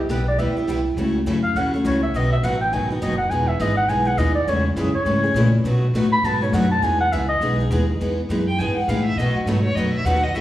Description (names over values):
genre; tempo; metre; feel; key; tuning
acoustic string swing (jazz manouche); 205 BPM; 4/4; swing 59% on 8ths; E major; A4 = 440 Hz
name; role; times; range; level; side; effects
mellow clarinet; melody; 0.0-7.6 s; E4 to B5; -22 LUFS; equal; none
upright bass; bass; 0.0-10.4 s; E1 to B2; -22 LUFS; equal; none
picked steel-string acoustic guitar; accompaniment; 0.1-10.4 s; B2 to G#4; -24 LUFS; left 1 dB; none
picked steel-string acoustic guitar; accompaniment; 0.1-10.4 s; B2 to B4; -27 LUFS; right 2 dB; none
rich violin; second line; 8.5-10.4 s; F#4 to G#5; -24 LUFS; equal; none
room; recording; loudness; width
wet recital hall reverb, RT60 1.7 s; recorded in a church or concert hall, small room ambience; -18 LUFS; side -14 dB against mid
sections
0.0-8.0 A section; 8.0-10.4 A section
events
clarinet solo 0.0-8.0; violin solo 8.0-10.4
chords
0.0 Cmaj7; 1.0 A6/C#; 2.1 B; 3.3 Emaj7; 4.5 Amaj7; 5.7 B7; 6.8 Emaj7; 9.2 B7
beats
0.09 0.38 0.68 | 0.97 1.26 1.55 1.85 | 2.14 2.43 2.72 3.02 | 3.31 3.60 3.90 4.19 | 4.48 4.77 5.07 5.36 | 5.65 5.95 6.24 6.53 | 6.83 7.12 7.41 7.71 | 8.00 8.29 8.59 8.88 | 9.17 9.47 9.76 10.05 | 10.35